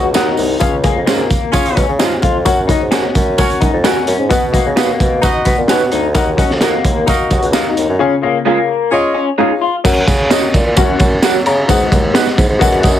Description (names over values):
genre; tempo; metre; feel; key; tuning
uptempo 1960s-style soul; 130 BPM; 4/4; straight; F# major; A4 = 441 Hz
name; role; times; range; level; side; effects
electric guitar through a small old amp; riff; 0.0-9.8 s; A#3 to F#4; -18 LUFS; left 6 dB; phaser
warm bassoon; bass; 0.0-13.0 s; B#1 to F#3; -17 LUFS; right 1 dB; none
warm upright piano; accompaniment; 0.1-13.0 s; G#2 to A#5; -18 LUFS; left 5 dB; none
electric guitar through a small old amp; stabs; 0.1-12.3 s; G#3 to B4; -18 LUFS; right 9 dB; wide subtle chorus
tambourine; percussion; 0.1-13.0 s; none; -27 LUFS; right 7 dB; none
crunchy breakbeat drum kit; drums; 0.2-12.9 s; crash cymbal, hi-hat, kick drum, ride cymbal, snare drum; -15 LUFS; right 1 dB; none
warm horn section; second line; 1.5-9.3 s; C#4 to D#5; -18 LUFS; right 2 dB; none
room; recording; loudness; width
light reverb; heavily compressed radio sound, multiband compression; -11 LUFS; side -11 dB against mid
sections
0.0-9.8 A section; 9.8-13.0 B section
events
none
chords
0.0 D#m; 0.6 C#; 2.5 F#; 4.3 B; 6.2 D#m; 8.0 C#; 9.8 F#; 11.7 G#m7